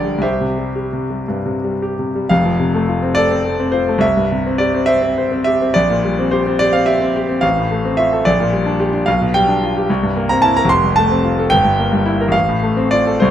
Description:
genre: classical, romantic character piece for solo piano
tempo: 55-76 BPM (dotted quarters)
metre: 6/8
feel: rubato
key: F major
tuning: A4 = 440 Hz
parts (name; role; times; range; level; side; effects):
- clear concert grand piano; solo; 0.0-13.3 s; F1 to C6; -14 LUFS; equal; none
room: light reverb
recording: close, detailed microphones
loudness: -13 LUFS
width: side -10 dB against mid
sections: 0.0-2.3 A section; 2.3-13.3 B section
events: none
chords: 0.2 C; 2.3 F; 4.0 C; 5.7 C7/Bb; 7.4 F/A; 8.3 Gm/Bb; 9.1 G7/B; 9.9 C7; 10.7 F; 11.5 Edim/G; 12.3 F/A

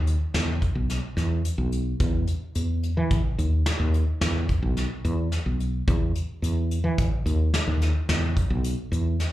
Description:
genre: progressive instrumental, band music in an uneven meter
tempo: 108 BPM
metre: 7/4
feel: straight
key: unclear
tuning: A4 = 440 Hz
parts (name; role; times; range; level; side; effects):
- woody fretless electric bass; bass; 0.0-9.2 s; B1 to E3; -24 LUFS; equal; none
- soft brush drum kit; drums; 0.1-9.3 s; hi-hat, kick drum, snare drum; -27 LUFS; equal; none
room: little or no reverb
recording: live gig heard through the venue's PA, club reverb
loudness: -23 LUFS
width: side -15 dB against mid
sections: 0.0-9.3 A section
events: none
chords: none

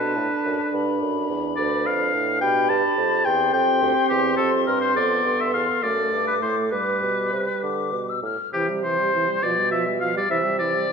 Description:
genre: quick classical-period movement for wind quintet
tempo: 66-72 BPM (dotted quarters)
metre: 6/8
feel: rubato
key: C major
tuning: A4 = 442 Hz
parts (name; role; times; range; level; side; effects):
- silver concert flute; melody; 0.0-10.9 s; G4 to F6; -29 LUFS; left 8 dB; none
- clear oboe; second line; 0.0-10.9 s; G4 to A5; -22 LUFS; left 3 dB; none
- warm French horn; accompaniment; 0.0-10.9 s; E3 to D4; -29 LUFS; right 3 dB; none
- warm clarinet; accompaniment; 0.0-10.9 s; E4 to B4; -29 LUFS; right 6 dB; none
- dark bassoon; bass; 0.0-10.9 s; D2 to D3; -27 LUFS; right 3 dB; none
room: moderate scoring stage reverb, RT60 1.7 s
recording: minimal, uncompressed stereo recording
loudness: -20 LUFS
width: side -6 dB against mid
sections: 0.0-8.5 A section; 8.5-10.9 B section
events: none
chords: 0.0 G; 1.6 G7/D; 3.3 C/E; 5.0 F; 5.8 D/F#; 6.7 G; 8.5 C; 9.4 G7/B; 10.3 C

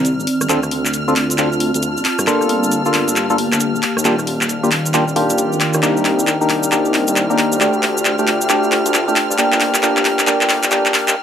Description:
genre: UK garage, two-step garage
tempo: 135 BPM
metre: 4/4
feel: swing 63% on 16ths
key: unclear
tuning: A4 = 439 Hz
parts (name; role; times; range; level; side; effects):
- warm symphonic violin section; sustained chords; 0.0-11.2 s; F6; -26 LUFS; right 1 dB; none
- dark detuned saw bass; bass; 0.0-11.2 s; D1 to G2; -23 LUFS; equal; high-pass filter
- garage drum kit; drums; 0.0-11.1 s; handclaps, hi-hat, rim click; -18 LUFS; left 1 dB; none
- airy breathy pad; texture; 0.0-11.2 s; Eb3 to Bb5; -23 LUFS; equal; chorus
- cabasa; percussion; 0.1-11.1 s; none; -24 LUFS; right 2 dB; none
- percussive organ stab; stabs; 0.5-11.1 s; A3 to A4; -17 LUFS; left 1 dB; chorus, digital delay
room: wet studio reverb, RT60 0.5 s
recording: high-pass filter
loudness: -14 LUFS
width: side -8 dB against mid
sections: 0.0-11.2 A section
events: build-up 0.0-11.2; drum fill 0.0-11.2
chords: 0.5 Dm7; 2.1 Gm9; 3.8 Ebmaj9; 5.8 Cm9; 7.6 Dm7; 9.2 Gm9

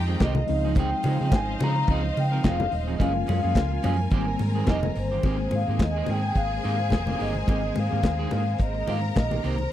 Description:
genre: disco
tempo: 107 BPM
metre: 4/4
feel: swing 56% on 16ths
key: Ab major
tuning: A4 = 440 Hz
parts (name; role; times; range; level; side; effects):
- clear studio string section; second line; 0.0-0.2, 5.2-9.7 s; G4 to Bb5; -35 LUFS; left 2 dB; none
- tine electric piano; accompaniment; 0.0-9.7 s; Eb3 to Eb4; -32 LUFS; left 3 dB; overdrive, fast stereo tremolo
- clear symphonic string section; sustained chords; 0.0-9.7 s; Db3 to Bb5; -37 LUFS; equal; none
- hollow-body short-scale fingered electric bass; bass; 0.0-9.7 s; Eb1 to Db3; -27 LUFS; equal; none
- electric guitar at the edge of break-up; accompaniment; 0.1-9.6 s; Eb3 to Bb4; -33 LUFS; right 7 dB; wide subtle chorus
- vibraphone with soft mallets; melody; 0.2-9.7 s; C5 to Bb5; -30 LUFS; left 1 dB; none
- modern studio drum kit; drums; 0.2-9.6 s; crash cymbal, handclaps, hi-hat, kick drum, snare drum; -23 LUFS; equal; none
- congas; percussion; 0.2-9.7 s; none; -32 LUFS; left 4 dB; none
room: small room ambience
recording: dry, close 1970s-style studio recording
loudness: -22 LUFS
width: side -12 dB against mid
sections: 0.0-5.2 A section; 5.2-9.7 B section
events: none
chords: 0.5 Dbmaj9; 3.0 Gbmaj9; 4.1 Abmaj9

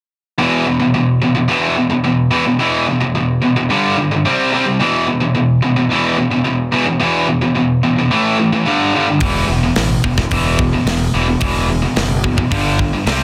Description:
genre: heavy metal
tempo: 109 BPM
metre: 4/4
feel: straight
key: E minor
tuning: A4 = 441 Hz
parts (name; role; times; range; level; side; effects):
- distorted electric guitar; riff; 0.4-13.2 s; E2 to C4; -20 LUFS; equal; distortion
- tight distorted guitar; riff; 0.4-13.2 s; E2 to C4; -18 LUFS; equal; distortion
- fuzz fingered electric bass; bass; 9.2-13.2 s; E1 to C2; -21 LUFS; equal; overdrive
- tight metal drum kit; drums; 9.2-13.2 s; hi-hat, kick drum, snare drum; -22 LUFS; equal; none
room: small room ambience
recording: dense, heavily limited modern master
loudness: -15 LUFS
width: mono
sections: 0.4-13.2 A section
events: none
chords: 0.4 E5; 3.7 G5; 4.2 C5; 4.8 E5; 8.1 A5; 8.7 G5; 9.2 E5; 12.5 G5

